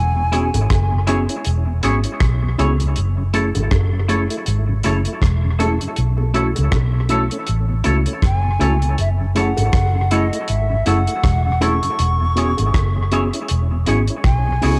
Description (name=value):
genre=lovers rock reggae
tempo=80 BPM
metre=4/4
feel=swing 57% on 16ths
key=F# minor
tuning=A4 = 439 Hz
part: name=breathy mellow silver concert flute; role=melody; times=0.0-1.0, 8.3-14.8 s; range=D#5 to C#6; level=-26 LUFS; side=equal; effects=cassette tape, tape echo
part: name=vintage muted fingered electric bass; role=bass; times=0.0-14.8 s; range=E1 to C#2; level=-20 LUFS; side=equal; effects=transformer saturation
part: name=mellow tonewheel organ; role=accompaniment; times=0.2-14.7 s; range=E2 to E4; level=-32 LUFS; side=equal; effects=chorus vibrato, slow rotary speaker, cassette tape, analog delay
part: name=mellow tine electric piano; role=accompaniment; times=0.3-14.8 s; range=A3 to G#4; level=-27 LUFS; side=equal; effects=cassette tape
part: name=twangy electric guitar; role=stabs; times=0.3-14.7 s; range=E4 to C#5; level=-28 LUFS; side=equal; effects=lush chorus, cassette tape, analog delay
part: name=damped 70s drum kit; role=drums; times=0.3-14.8 s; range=hi-hat, kick drum, rim click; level=-24 LUFS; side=equal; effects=cassette tape, analog delay
part: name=bongos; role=percussion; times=0.5-14.8 s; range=none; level=-34 LUFS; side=equal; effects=analog delay
room=light reverb, small room ambience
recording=home recording on cassette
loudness=-18 LUFS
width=mono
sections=0.0-14.8 A section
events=none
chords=0.0 E6; 3.0 F#m7; 6.0 B9sus4; 9.0 F#m7; 12.0 E6